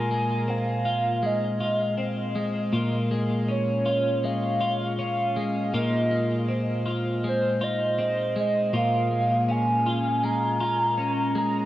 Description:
dream pop; 80 BPM; 4/4; straight; Bb minor; A4 = 440 Hz
warbly nostalgic lead; melody; 0.0-11.7 s; C5 to Bb5; -26 LUFS; right 1 dB; chorus, phaser, digital delay
twelve-string electric guitar; arpeggios; 0.0-11.7 s; Bb2 to F4; -25 LUFS; left 1 dB; lush chorus, digital delay
moderate shimmer reverb, RT60 4.0 s; worn, warbling old tape, cassette tape, warbly pitch drift; -23 LUFS; side -14 dB against mid
0.0-11.7 A section
0.0 Fm7/Bb; 2.7 Bbm7; 5.7 Fm7/Bb; 8.7 Bbm7

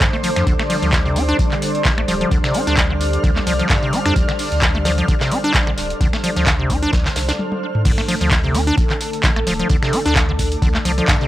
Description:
acid house; 130 BPM; 4/4; swing 55% on 16ths; D minor; A4 = 445 Hz
warm analog pad; sustained chords; 0.0-11.3 s; D3 to D5; -25 LUFS; left 1 dB; chorus, vintage 12-bit sampler grit, sidechain pumping
acid bass, square; riff; 0.0-11.3 s; C3 to D4; -21 LUFS; equal; tube saturation, sidechain pumping, tape echo
warm sub bass; bass; 0.0-11.2 s; D1 to G2; -22 LUFS; equal; sidechain pumping
booming analog drum machine; drums; 0.0-11.2 s; crash cymbal, finger snaps, handclaps, hi-hat, toms; -22 LUFS; equal
electronic kick drum; drums; 0.0-11.2 s; -19 LUFS; equal
warm soul drum kit; drums; 0.0-11.3 s; hi-hat, snare drum; -29 LUFS; right 1 dB; high-pass filter on hats, high-pass filter on snare, high-pass filter on room
granular cloud pad; texture; 0.0-11.3 s; D4 to F6; -26 LUFS; right 1 dB; built-in reverb, sidechain pumping
little or no reverb; dry, gritty hardware recording, transformer saturation; -15 LUFS; side -14 dB against mid
0.0-7.9 A section; 7.9-11.3 B section
drum fill 7.4-7.9; stop 7.4-7.9; drop 7.9-11.3
0.0 D5

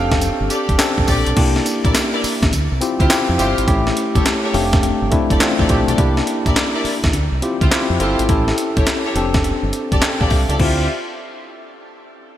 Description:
R&B, new jack swing; 104 BPM; 4/4; swing 65% on 16ths; D minor; A4 = 440 Hz
bright concert grand piano; melody; 0.0-0.7 s; F5; -32 LUFS; right 3 dB
tine electric piano; accompaniment; 0.0-10.9 s; A3 to A5; -20 LUFS; left 2 dB; medium stereo tremolo, shimmer reverb
deep dub fingered electric bass; bass; 0.0-10.9 s; F1 to F2; -21 LUFS; equal
breakbeat sampler-style drum kit; drums; 0.1-10.8 s; crash cymbal, handclaps, hi-hat, kick drum, snare drum, tambourine; -18 LUFS; equal; gated reverb
warm studio string section; stabs; 0.5-10.8 s; E4 to E5; -25 LUFS; equal; shimmer reverb, digital delay
moderate lush hall reverb, RT60 2.6 s; bright 1980s-style digital production; -14 LUFS; side -12 dB against mid
0.0-1.4 A section; 1.4-10.6 B section; 10.6-12.4 C section
tine electric piano fill 4.3-6.0
0.0 F69; 1.4 C9; 2.5 Dm11; 3.7 A7; 4.5 F69; 6.0 C9; 7.1 Dm11; 8.3 A7; 9.2 F69; 10.6 Dm11

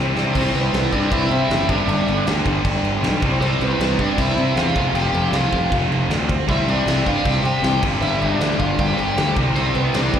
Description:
punk rock; 156 BPM; 4/4; straight; A4 = 444 Hz
distorted electric guitar; riff; 0.0-10.2 s; F2 to C4; -24 LUFS; left 12 dB; overdrive, slapback echo
tight distorted guitar; riff; 0.0-10.2 s; F2 to C4; -25 LUFS; right 13 dB; distortion, slapback echo
fuzz picked electric bass; bass; 0.0-10.2 s; F1 to C3; -21 LUFS; equal; overdrive
big rock drum kit; drums; 0.2-10.2 s; crash cymbal, kick drum, snare drum; -25 LUFS; equal
biting lead guitar; melody; 0.3-10.2 s; B3 to G5; -24 LUFS; right 1 dB; overdrive, slapback echo, tape echo
little or no reverb; live gig heard through the venue's PA, recital hall reverb; -16 LUFS; side -8 dB against mid
0.3-10.2 A section
drum fill 0.0-0.3
0.3 C; 1.7 G5; 3.2 C; 4.8 F5; 6.5 C; 7.8 G5; 9.4 C5

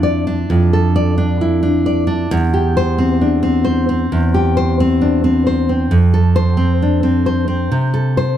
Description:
romantic piece for solo classical guitar; 66 BPM; 4/4; rubato; C major; A4 = 440 Hz
nylon-string guitar; solo; 0.0-8.4 s; E2 to D5; -13 LUFS; equal
light reverb; close, detailed microphones; -13 LUFS; side -10 dB against mid
0.0-8.4 A section
0.0 Dm/F; 2.3 C/E; 5.9 F

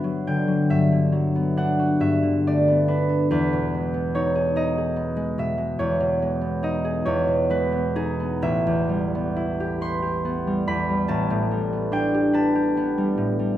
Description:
classical, solo harp piece; 42-49 BPM (dotted quarters); 6/8; rubato; A4 = 443 Hz
concert harp; solo; 0.0-13.6 s; A1 to C6; -20 LUFS; equal
wet recital hall reverb, RT60 1.5 s; -20 LUFS; side -12 dB against mid
0.0-13.6 A section
0.0 Gmaj7; 2.0 Bm7/G; 3.3 Emaj7; 8.4 Am9; 11.1 Gadd9/A

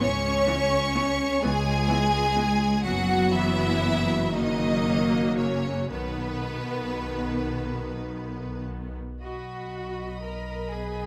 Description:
classical, slow romantic movement for string orchestra; 36-43 BPM (dotted quarters); 6/8; rubato; B major; A4 = 440 Hz
rich studio violin section; melody; 0.0-11.1 s; B4 to C#6; -34 LUFS; equal
rich studio violin section; second line; 0.0-11.1 s; B3 to D#5; -32 LUFS; equal
rich studio viola section; accompaniment; 0.0-11.1 s; D#3 to B3; -31 LUFS; equal
clear studio double bass section; bass; 0.0-11.1 s; F#1 to C#2; -33 LUFS; equal
warm studio cello section; bass; 0.0-11.1 s; B2 to A#4; -33 LUFS; equal
moderate concert hall reverb, RT60 2.0 s; -26 LUFS; mono
0.0-9.2 A section; 9.2-11.1 A section
0.0 C#m7; 2.8 B5/F#; 4.3 F#; 5.9 B

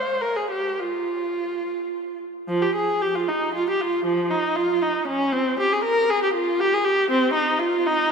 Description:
classical, baroque-style suite movement for unaccompanied viola; 103-121 BPM; 3/4; rubato; F minor; A4 = 439 Hz
warm viola; solo; 0.0-8.1 s; F3 to C5; -20 LUFS; equal
wet church reverb, RT60 3.8 s; minimal, uncompressed stereo recording; -20 LUFS; side -6 dB against mid
0.0-2.5 A section; 2.5-8.1 B section

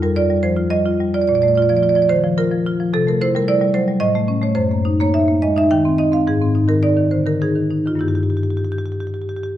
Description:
classical, contemporary piece for solo marimba; 107 BPM; 3/4; uneven beats, rubato; G minor; A4 = 440 Hz
marimba with medium hard mallets; solo; 0.0-9.6 s; F2 to G5; -15 LUFS; equal
wet recital hall reverb, RT60 1.7 s; dark, warm production; -15 LUFS; side -12 dB against mid
0.0-9.6 A section
0.0 Fsus2; 1.3 Bbmaj7; 2.9 C6; 4.0 A; 4.6 F#69; 5.7 Eb6; 6.3 Ab; 8.0 Gm6

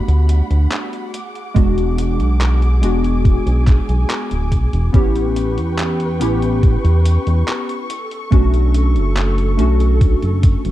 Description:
vaporwave; 71 BPM; 4/4; straight; A4 = 439 Hz
warbly lo-fi synth keys; accompaniment; 0.0-10.7 s; G#3 to G4; -21 LUFS; equal; analog chorus, analog delay
muted studio string section; sustained chords; 0.0-10.7 s; G3 to D6; -28 LUFS; equal
chorused synth bass; bass; 0.1-10.7 s; D1 to E2; -15 LUFS; equal
detuned 8-bit digital drum machine; drums; 0.1-10.7 s; handclaps, hi-hat; -27 LUFS; equal; overdrive
electronic kick drum; drums; 1.6-10.6 s; -14 LUFS; equal; overdrive
digital ambience; dark, warm production; -13 LUFS; side -14 dB against mid
0.0-10.7 A section
0.0 Gmaj7; 1.1 E9; 4.9 A9; 7.9 Bm9

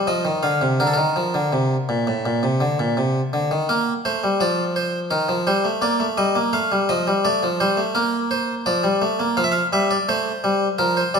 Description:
classical, baroque-style two-part invention for harpsichord; 84 BPM; 4/4; straight; Bb major; A4 = 441 Hz
harpsichord; solo; 0.0-11.2 s; A2 to F5; -18 LUFS; equal
wet recital hall reverb, RT60 1.6 s; -18 LUFS; side -6 dB against mid
0.0-3.7 A section; 3.7-11.2 B section
0.1 F5; 0.8 Bb; 5.1 Cm7/Eb; 6.5 F7; 8.0 Bb; 9.4 F

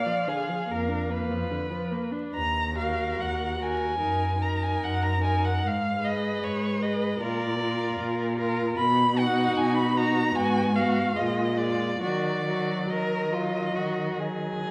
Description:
classical, slow romantic movement for string quartet; 75 BPM; 4/4; uneven beats, rubato; Eb minor; A4 = 440 Hz
rich violin; melody; 0.0-14.6 s; Db5 to B5; -31 LUFS; equal
warm violin; second line; 0.0-14.7 s; F4 to D5; -34 LUFS; equal
rich viola; accompaniment; 0.0-14.7 s; D3 to Ab4; -34 LUFS; equal
warm cello; bass; 0.7-14.7 s; Eb2 to Eb3; -31 LUFS; equal
moderate recital hall reverb, RT60 1.4 s; vinyl crackle; -27 LUFS; mono
0.0-14.7 A section
0.0 Bb; 2.4 Ebm; 4.0 Ebm/Gb; 5.6 Abm; 7.2 Bb; 8.8 B; 10.4 Abm7; 11.2 Bb7; 12.0 Ebm

